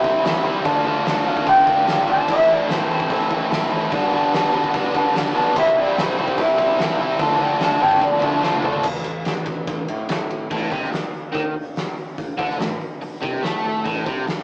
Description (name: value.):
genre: garage rock duo or trio.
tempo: 146 BPM.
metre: 4/4.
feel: straight.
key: A minor.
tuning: A4 = 437 Hz.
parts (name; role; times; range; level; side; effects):
clean lap steel guitar; melody; 0.0-8.8 s; E4 to C6; -18 LUFS; equal; none.
biting overdriven guitar; riff; 0.0-14.3 s; G2 to F4; -20 LUFS; equal; none.
overdriven picked electric bass; bass; 0.0-14.3 s; G1 to A2; -30 LUFS; equal; none.
oversized low-tuned drum kit; drums; 0.0-14.4 s; crash cymbal, hi-hat, kick drum, ride cymbal, snare drum, toms; -25 LUFS; equal; none.
room: wet studio reverb, RT60 0.6 s.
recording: rough rehearsal-room recording, tube saturation, cassette tape, small speaker sound.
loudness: -17 LUFS.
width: side -32 dB against mid.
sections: 0.0-8.8 A section; 8.8-10.5 B section; 10.5-14.4 C section.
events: drum fill 8.4-8.8.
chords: 0.0 C; 0.7 Dm; 2.3 Am; 3.9 G; 5.6 C; 7.2 Dm; 8.8 N.C.; 10.5 Am.